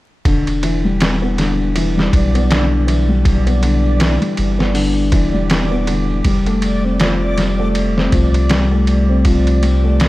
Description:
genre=trip hop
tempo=80 BPM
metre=4/4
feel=swing 58% on 16ths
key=E phrygian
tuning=A4 = 439 Hz
part: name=felt-muted upright piano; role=arpeggios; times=0.3-10.1 s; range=D3 to C4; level=-17 LUFS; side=left 2 dB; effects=vintage 12-bit sampler grit, digital delay
part: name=soft dub sub bass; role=bass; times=0.3-10.1 s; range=E1 to C2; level=-17 LUFS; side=equal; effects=none
part: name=trip hop sampler-style drum kit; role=drums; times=0.3-10.1 s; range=hi-hat, kick drum, ride cymbal, snare drum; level=-19 LUFS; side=equal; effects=none
part: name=backwards swelling texture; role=texture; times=1.3-10.1 s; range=D5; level=-27 LUFS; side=right 3 dB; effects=built-in reverb
room=light reverb, digital ambience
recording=vinyl crackle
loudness=-13 LUFS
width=side -18 dB against mid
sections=0.3-10.1 A section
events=none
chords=0.3 Em7; 6.3 Fadd9

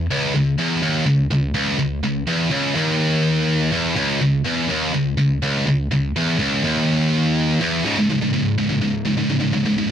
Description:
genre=metal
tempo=124 BPM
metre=4/4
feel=straight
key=C# minor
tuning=A4 = 440 Hz
part: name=heavy high-gain guitar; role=solo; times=0.0-9.9 s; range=C#2 to C#3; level=-17 LUFS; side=equal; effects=distortion
room=little or no reverb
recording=dry, close 1970s-style studio recording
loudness=-17 LUFS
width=side -9 dB against mid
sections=0.0-7.9 A section; 7.9-9.9 B section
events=none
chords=0.1 C#m; 7.9 C#5

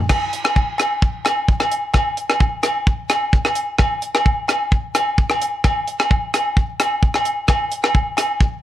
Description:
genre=highlife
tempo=130 BPM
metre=4/4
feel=straight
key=none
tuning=none
part: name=tight funk drum kit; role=drums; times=0.1-8.5 s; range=crash cymbal, hi-hat, kick drum, rim click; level=-17 LUFS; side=equal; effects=none
part: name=agogo bells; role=percussion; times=0.1-8.3 s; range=none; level=-20 LUFS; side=left 1 dB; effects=none
room=light reverb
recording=none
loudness=-16 LUFS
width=side -12 dB against mid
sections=0.1-8.6 A section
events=none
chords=none

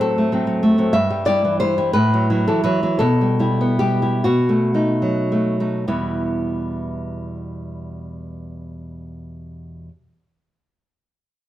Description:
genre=romantic piece for solo classical guitar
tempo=32-65 BPM (dotted quarters)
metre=6/8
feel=rubato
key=E minor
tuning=A4 = 440 Hz
part: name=nylon-string guitar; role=solo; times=0.0-9.9 s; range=E2 to E5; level=-18 LUFS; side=equal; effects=none
room=wet stone room reverb, RT60 1.1 s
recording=band playing live in one room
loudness=-17 LUFS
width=side -13 dB against mid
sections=0.0-5.9 A section; 5.9-11.5 B section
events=slowing down 0.0-5.9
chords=0.0 F#dim/A; 1.0 Em/G; 2.0 B7sus4/A; 3.0 Em/B; 4.3 B7; 5.9 Em

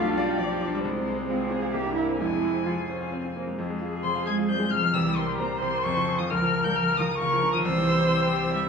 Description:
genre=quick classical-period movement for piano quartet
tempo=133 BPM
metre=3/4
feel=straight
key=F minor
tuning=A4 = 440 Hz
part: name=muted violin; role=melody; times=0.0-8.5 s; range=Ab4 to Ab6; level=-28 LUFS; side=left 5 dB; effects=none
part: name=muted cello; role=second line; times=0.0-8.5 s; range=Bb2 to Ab4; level=-28 LUFS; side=right 3 dB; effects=none
part: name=bright concert grand piano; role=accompaniment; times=0.0-8.7 s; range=B1 to Bb5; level=-28 LUFS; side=left 2 dB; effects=none
part: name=muted viola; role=accompaniment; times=0.0-8.7 s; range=F3 to E5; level=-31 LUFS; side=right 3 dB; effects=none
room=wet recital hall reverb, RT60 1.4 s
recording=none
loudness=-23 LUFS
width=side -5 dB against mid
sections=0.0-3.6 A section; 3.6-8.7 A section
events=none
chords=0.0 G7/B; 0.8 Fm/C; 1.7 C7; 2.2 Fm; 5.0 C5; 5.9 Fm; 6.3 Bbm/Db; 7.6 C

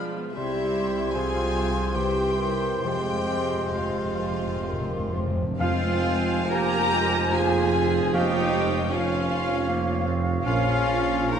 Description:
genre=classical, slow romantic movement for symphony orchestra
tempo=62-79 BPM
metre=3/4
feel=rubato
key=F minor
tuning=A4 = 441 Hz
part: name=dark studio violin section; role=second line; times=0.0-11.4 s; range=B3 to Bb5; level=-33 LUFS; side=left 4 dB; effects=none
part: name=mellow cor anglais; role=second line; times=0.0-11.4 s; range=C5 to Db5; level=-36 LUFS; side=right 1 dB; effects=none
part: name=small flute group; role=second line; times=0.0-11.4 s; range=F5 to C6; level=-34 LUFS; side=left 1 dB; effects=none
part: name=rich chamber viola section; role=accompaniment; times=0.0-11.4 s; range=C3 to G4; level=-31 LUFS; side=right 2 dB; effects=none
part: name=warm bassoon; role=accompaniment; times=0.0-11.4 s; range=E3 to Ab3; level=-32 LUFS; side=right 2 dB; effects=none
part: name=mellow French horn section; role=sustained chords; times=0.0-10.8 s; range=Ab3 to C5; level=-34 LUFS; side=left 2 dB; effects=none
part: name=concert harp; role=arpeggios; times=0.0-11.4 s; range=Bb2 to Db5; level=-35 LUFS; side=left 6 dB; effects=none
part: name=rich chamber violin section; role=melody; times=0.4-11.4 s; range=E5 to Bb5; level=-35 LUFS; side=left 3 dB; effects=none
part: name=warm clarinet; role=second line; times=0.4-11.4 s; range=Ab3 to Ab4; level=-32 LUFS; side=left 1 dB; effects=none
part: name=rich studio cello section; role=bass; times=0.4-11.4 s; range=C2 to Bb4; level=-31 LUFS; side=right 3 dB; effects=none
part: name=warm studio double bass section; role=bass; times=0.4-11.4 s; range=F1 to F2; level=-31 LUFS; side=right 3 dB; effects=none
part: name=timpani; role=percussion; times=2.9-6.9 s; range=F2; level=-32 LUFS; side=equal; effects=none
part: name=clear trumpet section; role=stabs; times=5.6-10.8 s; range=F5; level=-33 LUFS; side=right 2 dB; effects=none
part: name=mellow tuba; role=bass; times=5.6-11.4 s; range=F1 to Bb1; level=-32 LUFS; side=right 4 dB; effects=none
room=wet scoring stage reverb, RT60 1.8 s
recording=nothing above 10.8 kHz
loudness=-22 LUFS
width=side -8 dB against mid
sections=0.0-5.6 A section; 5.6-11.4 B section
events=timpani fill 2.9-5.6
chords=0.4 C; 1.2 Fm/C; 2.0 C; 2.9 Fm; 8.1 Db/F; 10.5 Bbm

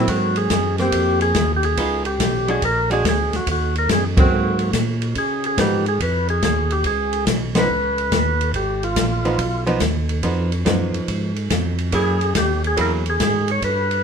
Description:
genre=soul jazz organ trio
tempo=142 BPM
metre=4/4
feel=swing 67% on 8ths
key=Db mixolydian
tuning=A4 = 436 Hz
part: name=percussive tonewheel organ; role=melody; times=0.0-14.0 s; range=F4 to Db5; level=-21 LUFS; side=equal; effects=slow rotary speaker
part: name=archtop guitar, miked and amplified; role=accompaniment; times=0.0-13.0 s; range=F3 to Ab4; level=-23 LUFS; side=right 2 dB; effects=none
part: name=tonewheel organ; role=bass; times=0.0-14.0 s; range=Ab1 to Db3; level=-23 LUFS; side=equal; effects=overdrive, chorus vibrato, slow rotary speaker
part: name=open jazz drum kit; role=drums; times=0.1-14.0 s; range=hi-hat, kick drum, ride cymbal, snare drum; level=-23 LUFS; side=equal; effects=none
room=moderate club reverb, RT60 0.7 s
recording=minimal, uncompressed stereo recording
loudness=-17 LUFS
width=side -6 dB against mid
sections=0.0-5.2 A section; 5.2-14.0 A section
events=band accent 4.1, 7.5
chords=0.1 Ab9; 1.8 Db9; 2.6 Bbaug7; 3.5 Ebm; 4.3 Ab9; 5.2 Db9; 11.9 Gb9

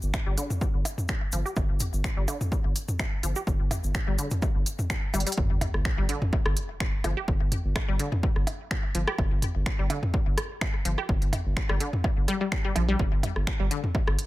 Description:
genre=minimal techno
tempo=126 BPM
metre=4/4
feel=swing 54% on 16ths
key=G minor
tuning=A4 = 437 Hz
part: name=saturated sub bass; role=bass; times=0.0-14.2 s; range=G1 to Bb1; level=-28 LUFS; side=equal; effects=sidechain pumping
part: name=cabasa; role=percussion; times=0.0-5.4 s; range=none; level=-38 LUFS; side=left 4 dB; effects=none
part: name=electronic kick drum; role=drums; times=0.1-14.1 s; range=none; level=-28 LUFS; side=equal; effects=none
part: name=garage drum kit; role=drums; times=0.1-14.3 s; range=finger snaps, hi-hat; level=-35 LUFS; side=right 1 dB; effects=none
part: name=minimal click drum kit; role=percussion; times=0.1-14.2 s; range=percussion blips, rim click, toms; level=-32 LUFS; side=equal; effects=ping-pong delay
part: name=resonant blip pluck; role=riff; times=0.3-13.8 s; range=D3 to G4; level=-33 LUFS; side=left 1 dB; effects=chorus, sidechain pumping, ping-pong delay
part: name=sub drop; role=sound effects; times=5.4-7.3 s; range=none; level=-36 LUFS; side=equal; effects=none
room=digital ambience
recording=none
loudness=-25 LUFS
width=side -17 dB against mid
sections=0.0-5.4 A section; 5.4-14.3 B section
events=drum fill 5.1; drop 5.4-14.3; impact 5.4-7.3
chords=none

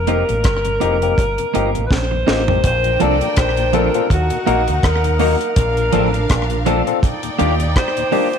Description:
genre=lovers rock reggae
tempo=82 BPM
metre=4/4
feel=swing 57% on 16ths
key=Bb major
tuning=A4 = 440 Hz
part: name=breathy alto saxophone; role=melody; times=0.0-8.4 s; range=Gb4 to D5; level=-20 LUFS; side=equal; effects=tape echo
part: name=deep dub fingered electric bass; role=bass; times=0.0-7.7 s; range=F1 to Eb2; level=-20 LUFS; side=right 1 dB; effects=none
part: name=barky tine electric piano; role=accompaniment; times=0.1-8.3 s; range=Bb3 to Bb4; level=-22 LUFS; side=left 10 dB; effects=overdrive, auto-pan
part: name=mellow tonewheel organ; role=accompaniment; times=0.1-8.2 s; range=Eb2 to F4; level=-29 LUFS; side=left 9 dB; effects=chorus vibrato, slow rotary speaker, slapback echo
part: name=twelve-string electric guitar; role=stabs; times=0.1-8.3 s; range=F3 to Bb4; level=-22 LUFS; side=right 11 dB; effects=slapback echo
part: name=deep reggae drum kit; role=drums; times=0.1-8.4 s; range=hi-hat, kick drum, rim click, snare drum, toms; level=-20 LUFS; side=equal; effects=slapback echo
part: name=clear studio string section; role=second line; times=2.6-8.4 s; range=D4 to G5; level=-25 LUFS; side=equal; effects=none
room=moderate echo chamber reverb, RT60 1.9 s, small room ambience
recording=1960s-style stereo with parts hard left and right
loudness=-14 LUFS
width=side -7 dB against mid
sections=0.0-2.6 A section; 2.6-8.4 B section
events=drum fill 1.9-2.6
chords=0.0 F7sus4; 2.6 Bbmaj7; 4.1 Ebm; 5.6 Bbmaj7; 7.0 Ebmaj7

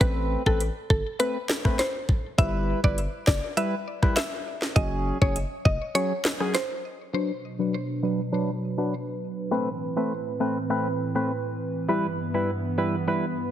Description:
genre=dancehall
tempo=101 BPM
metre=4/4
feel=straight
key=B phrygian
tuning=A4 = 441 Hz
part: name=mallet-like synth pluck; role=melody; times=0.0-7.0 s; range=A4 to E5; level=-29 LUFS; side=left 1 dB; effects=chorus, ping-pong delay
part: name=percussive organ stab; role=accompaniment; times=0.0-13.3 s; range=F#3 to B4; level=-27 LUFS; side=equal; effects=chorus, low-pass filter
part: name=hard-hitting 808-style bass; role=bass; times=0.0-5.8 s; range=E#1 to A1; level=-27 LUFS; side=equal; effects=none
part: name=island pop drum kit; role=drums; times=0.0-6.7 s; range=hi-hat, kick drum, rim click, snare drum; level=-24 LUFS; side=equal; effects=none
part: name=hollow soft pad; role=sustained chords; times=7.4-13.5 s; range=G2 to B4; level=-30 LUFS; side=right 2 dB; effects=chorus, sidechain pumping, low-pass filter
room=light reverb, digital ambience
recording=heavily compressed radio sound, multiband compression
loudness=-24 LUFS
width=side -11 dB against mid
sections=0.0-7.1 A section; 7.1-13.5 B section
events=break 6.0-7.1; filter sweep 7.1-13.5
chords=0.0 Amadd9; 2.4 Em; 4.8 F#sus2; 7.1 Bm; 9.5 Amadd9; 11.9 Em/G

